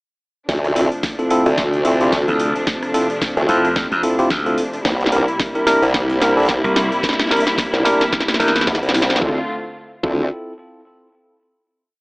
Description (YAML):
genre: glitch hop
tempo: 110 BPM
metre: 4/4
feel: swing 57% on 16ths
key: D minor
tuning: A4 = 438 Hz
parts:
  - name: dark studio string section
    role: sustained chords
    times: 0.5-9.5 s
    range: C3 to F4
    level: -23 LUFS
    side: equal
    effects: sidechain pumping
  - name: formant-sweep wobble bass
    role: bass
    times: 0.5-10.3 s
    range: C2 to E2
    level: -18 LUFS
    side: equal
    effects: chorus, tube saturation
  - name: drum and bass drum kit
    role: drums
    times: 0.5-9.3 s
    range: hi-hat, rim click, snare drum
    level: -21 LUFS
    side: equal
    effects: none
  - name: electronic kick drum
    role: drums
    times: 0.5-10.2 s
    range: none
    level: -29 LUFS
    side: equal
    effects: none
  - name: bright tine electric piano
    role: stabs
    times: 0.8-10.2 s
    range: C4 to Bb4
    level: -19 LUFS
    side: equal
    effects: vintage 12-bit sampler grit, sidechain pumping, digital delay
  - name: slap bass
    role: bass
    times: 2.3-8.7 s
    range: C2 to F2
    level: -19 LUFS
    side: equal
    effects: none
room: light reverb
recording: AM radio sound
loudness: -15 LUFS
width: side -35 dB against mid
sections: 0.5-9.2 build; 9.2-11.4 final chord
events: build-up 0.5-9.2; drum fill 0.5-9.2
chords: 0.5 Dm7; 4.9 C7; 9.2 Dm7